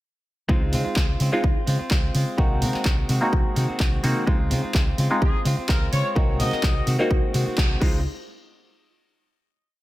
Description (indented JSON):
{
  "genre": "filtered disco house",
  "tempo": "127 BPM",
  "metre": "4/4",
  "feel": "swing 53% on 16ths",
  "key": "Db major",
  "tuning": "A4 = 438 Hz",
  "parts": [
    { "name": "mellow clav", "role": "accompaniment", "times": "0.5-8.0 s", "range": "Ab3 to Gb4", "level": "-27 LUFS", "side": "equal", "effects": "phaser, vintage 12-bit sampler grit, sidechain pumping" },
    { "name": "direct-recorded clean electric guitar", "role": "riff", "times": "0.5-8.0 s", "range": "Eb3 to Gb4", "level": "-30 LUFS", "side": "equal", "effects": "sidechain pumping" },
    { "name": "hollow-body short-scale fingered electric bass", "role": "bass", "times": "0.5-8.0 s", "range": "C2 to Db3", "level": "-24 LUFS", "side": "equal", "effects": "sidechain pumping" },
    { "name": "electronic kick drum", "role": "drums", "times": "0.5-7.9 s", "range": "none", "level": "-22 LUFS", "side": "equal", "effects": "overdrive" },
    { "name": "punchy analog drum machine", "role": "drums", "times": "0.7-7.9 s", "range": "crash cymbal, handclaps, hi-hat", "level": "-30 LUFS", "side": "equal", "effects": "none" },
    { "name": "clear horn section", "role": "melody", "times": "5.2-6.9 s", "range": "Ab4 to Eb5", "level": "-30 LUFS", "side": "left 2 dB", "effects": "sidechain pumping, diffuse ambient delay" }
  ],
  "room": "light reverb",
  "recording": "none",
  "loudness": "-20 LUFS",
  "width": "side -16 dB against mid",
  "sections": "0.5-8.1 drop; 8.1-9.8 final hit",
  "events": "drop 0.5-8.1; band accent 7.6",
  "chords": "0.5 Dbmaj7; 2.4 Ab7/C; 4.3 Dbmaj7; 6.2 Ab7/C; 7.8 Dbmaj7; 8.1 N.C."
}